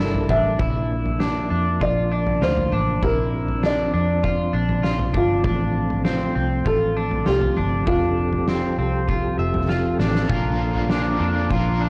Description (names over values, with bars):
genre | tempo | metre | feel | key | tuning
dream pop | 99 BPM | 4/4 | straight | unclear | A4 = 438 Hz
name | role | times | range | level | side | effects
felt-muted upright piano | melody | 0.0-9.7 s | F4 to E5 | -27 LUFS | equal | tape echo
mellow tonewheel organ | sustained chords | 0.0-11.9 s | F3 to Bb4 | -28 LUFS | equal | chorus vibrato, subtle chorus
electric guitar at the edge of break-up | arpeggios | 0.0-11.9 s | C4 to E5 | -30 LUFS | equal | subtle chorus, tape echo
vintage muted fingered electric bass | bass | 0.0-11.9 s | F1 to F2 | -27 LUFS | equal | none
oversized low-tuned drum kit | drums | 0.1-11.6 s | kick drum, snare drum, toms | -28 LUFS | equal | none
biting overdriven guitar | accompaniment | 10.3-11.9 s | Bb2 to Bb4 | -30 LUFS | equal | harmonic tremolo, lush chorus
room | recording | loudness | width
light reverb, small room ambience | dry, gritty hardware recording, transformer saturation, cassette tape, nothing above 10.4 kHz | -21 LUFS | mono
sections
0.0-10.3 A section; 10.3-11.9 A section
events
drum fill 9.7-10.3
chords
0.0 Gmadd9; 0.6 Bb; 5.4 F/A; 7.9 Fadd9; 10.3 Bb